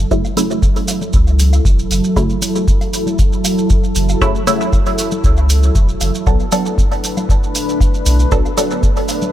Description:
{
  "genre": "dub techno",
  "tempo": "117 BPM",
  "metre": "4/4",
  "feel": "straight",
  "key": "F# minor",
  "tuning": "A4 = 441 Hz",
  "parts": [
    { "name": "deep dark ambient pad", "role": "sustained chords", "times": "0.0-9.3 s", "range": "F#3 to B4", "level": "-20 LUFS", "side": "equal", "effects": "chorus, built-in reverb, vintage 12-bit sampler grit, sidechain pumping" },
    { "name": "warm sub bass", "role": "bass", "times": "0.0-8.4 s", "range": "E1 to C#2", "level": "-14 LUFS", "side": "equal", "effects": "tube saturation, sidechain pumping" },
    { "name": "filtered dub chord stab", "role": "stabs", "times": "0.1-8.9 s", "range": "C#3 to A4", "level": "-20 LUFS", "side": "right 1 dB", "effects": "phaser, sidechain pumping, dub echo" },
    { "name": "electronic kick drum", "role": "drums", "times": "0.1-8.9 s", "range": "none", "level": "-15 LUFS", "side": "equal", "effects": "none" },
    { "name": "maracas", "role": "percussion", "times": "0.1-9.3 s", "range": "none", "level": "-25 LUFS", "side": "right 4 dB", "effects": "none" },
    { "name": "woodblock and congas", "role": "percussion", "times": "0.2-9.3 s", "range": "none", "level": "-28 LUFS", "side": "left 2 dB", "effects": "sidechain pumping on perc, dub echo" },
    { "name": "electronic hi-hat", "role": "drums", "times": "0.4-9.2 s", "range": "none", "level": "-26 LUFS", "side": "equal", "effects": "overdrive" }
  ],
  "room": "little or no reverb",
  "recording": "none",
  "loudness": "-12 LUFS",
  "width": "side -12 dB against mid",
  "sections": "0.0-9.3 A section",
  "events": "none",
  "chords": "0.0 F#m7; 6.3 Bm7",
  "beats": "| 0.11 0.63 1.14 1.65 | 2.16 2.68 3.19 3.70 | 4.21 4.73 5.24 5.75 | 6.27 6.78 7.29 7.80 | 8.32 8.83"
}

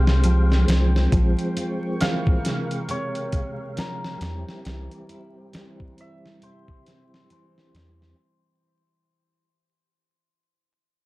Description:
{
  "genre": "trip hop",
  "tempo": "68 BPM",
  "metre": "4/4",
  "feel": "swing 59% on 16ths",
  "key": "unclear",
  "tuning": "A4 = 441 Hz",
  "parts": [
    { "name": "cimbalom", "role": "melody", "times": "0.0-10.0 s", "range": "Bb4 to F5", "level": "-34 LUFS", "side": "equal", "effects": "tape echo" },
    { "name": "percussive tonewheel organ", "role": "accompaniment", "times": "0.0-8.2 s", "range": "C3 to F5", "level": "-30 LUFS", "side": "equal", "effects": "chorus vibrato, fast rotary speaker, tremolo, vintage 12-bit sampler grit" },
    { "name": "dark analog pad", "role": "sustained chords", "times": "0.0-8.2 s", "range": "G3 to Db6", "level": "-41 LUFS", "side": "left 1 dB", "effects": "chorus" },
    { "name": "nylon-string guitar", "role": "arpeggios", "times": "0.0-8.1 s", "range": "C3 to F4", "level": "-30 LUFS", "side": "right 1 dB", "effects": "tape echo" },
    { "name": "soft dub sub bass", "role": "bass", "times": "0.0-8.1 s", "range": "Bb1 to E2", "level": "-19 LUFS", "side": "equal", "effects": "none" },
    { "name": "dusty soul sampler-style drum kit", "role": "drums", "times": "0.1-8.2 s", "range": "hi-hat, kick drum, snare drum", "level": "-25 LUFS", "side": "equal", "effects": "none" }
  ],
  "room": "little or no reverb",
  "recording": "dark, warm production, vinyl crackle",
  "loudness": "-20 LUFS",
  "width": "side -20 dB against mid",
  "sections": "0.0-8.2 A section",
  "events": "fade-out 0.0-8.2",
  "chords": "0.0 Fmadd9; 1.1 Bbm7; 4.7 C",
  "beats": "0.24 | 1.13 2.01 2.89 3.77 | 4.66 5.54 6.42 7.30"
}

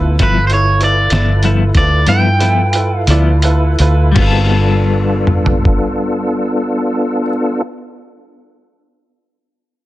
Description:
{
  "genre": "slow blues",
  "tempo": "54-67 BPM (dotted quarters)",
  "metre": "12/8",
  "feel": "straight",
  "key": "G mixolydian",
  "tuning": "A4 = 440 Hz",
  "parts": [
    { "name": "bright baby grand piano", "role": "accompaniment", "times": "0.0-7.3 s", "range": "E4 to D5", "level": "-23 LUFS", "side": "right 4 dB", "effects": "none" },
    { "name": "tonewheel organ", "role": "sustained chords", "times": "0.0-7.6 s", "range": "B3 to B4", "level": "-19 LUFS", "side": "equal", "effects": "slow rotary speaker, chorus vibrato" },
    { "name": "vintage muted fingered electric bass", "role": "bass", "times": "0.0-7.2 s", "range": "G1 to G2", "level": "-13 LUFS", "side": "equal", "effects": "none" },
    { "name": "electric guitar at the edge of break-up", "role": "melody", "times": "0.2-3.4 s", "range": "B4 to G5", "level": "-16 LUFS", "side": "right 1 dB", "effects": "slapback echo" },
    { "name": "clean electric guitar", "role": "accompaniment", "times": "0.2-7.8 s", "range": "G2 to A4", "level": "-19 LUFS", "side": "left 6 dB", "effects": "tremolo" },
    { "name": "lo-fi sampler-style drum kit", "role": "drums", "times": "0.2-5.8 s", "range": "crash cymbal, hi-hat, kick drum, snare drum, toms", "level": "-16 LUFS", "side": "equal", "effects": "none" }
  ],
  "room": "little or no reverb",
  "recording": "dense, heavily limited modern master",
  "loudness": "-11 LUFS",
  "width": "side -16 dB against mid",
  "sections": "0.0-4.2 A section; 4.2-8.6 B section",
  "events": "slowing down 0.0-4.2; kick and snare drop out 2.1-4.2",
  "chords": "0.0 G13; 4.2 G9",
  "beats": "| 0.21 1.13 2.08 3.09 | 4.17 5.29 6.41 7.53"
}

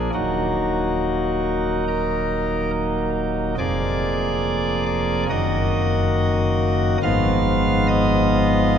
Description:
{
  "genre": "classical, chorale-style piece for pipe organ",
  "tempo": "70 BPM",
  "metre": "4/4",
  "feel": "rubato",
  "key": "Eb minor",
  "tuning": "A4 = 440 Hz",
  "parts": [
    { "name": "pipe organ, cornet", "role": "solo", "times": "0.0-8.8 s", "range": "Eb1 to F5", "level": "-18 LUFS", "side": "equal", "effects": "none" }
  ],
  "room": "wet cathedral reverb, RT60 4.9 s",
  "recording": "none",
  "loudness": "-18 LUFS",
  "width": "side -8 dB against mid",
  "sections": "0.0-8.8 A section",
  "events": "none",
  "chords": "0.1 Ebm; 3.6 Bb7/F; 5.3 Ebm/Gb; 7.0 Fm7b5/Ab",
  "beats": "| 0.14 1.01 1.88 2.73 | 3.59 4.44 5.30 6.16 | 7.02 7.88 8.75"
}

